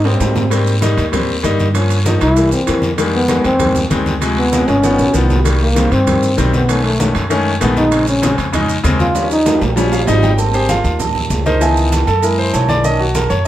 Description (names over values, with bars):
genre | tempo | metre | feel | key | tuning
Afro-Cuban jazz | 194 BPM | 4/4 | straight | Ab major | A4 = 442 Hz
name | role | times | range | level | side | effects
mellow trombone | melody | 0.0-9.6 s | A3 to F4 | -16 LUFS | equal | none
clear grand piano | accompaniment | 0.0-13.5 s | C3 to Ab5 | -17 LUFS | left 2 dB | none
upright bass | bass | 0.0-13.5 s | G1 to Ab2 | -17 LUFS | equal | none
congas | percussion | 0.0-13.5 s | none | -24 LUFS | right 1 dB | none
timbales and agogo bells | percussion | 0.1-13.5 s | none | -23 LUFS | right 7 dB | none
guiro | percussion | 0.2-13.5 s | none | -28 LUFS | left 3 dB | none
maracas | percussion | 0.2-13.5 s | none | -30 LUFS | right 7 dB | none
room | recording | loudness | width
light reverb | none | -12 LUFS | side -13 dB against mid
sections
0.5-10.4 A section; 10.4-13.5 A section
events
trombone solo 0.0-10.4; drum fill 0.1-0.5, 4.5-5.5, 9.2-10.4; grand piano fill 9.8-10.4; grand piano solo 10.4-13.5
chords
0.0 Abmaj9; 0.5 Abmaj7; 1.8 Gm7b5; 2.4 C7; 3.0 Fm11; 4.2 Dm7b5; 4.8 G7alt; 5.5 Cm7; 6.7 B13; 7.9 Bbm7; 9.2 Eb7; 10.4 Abmaj9; 11.6 Dbm9; 12.2 Gb9; 12.8 Bmaj9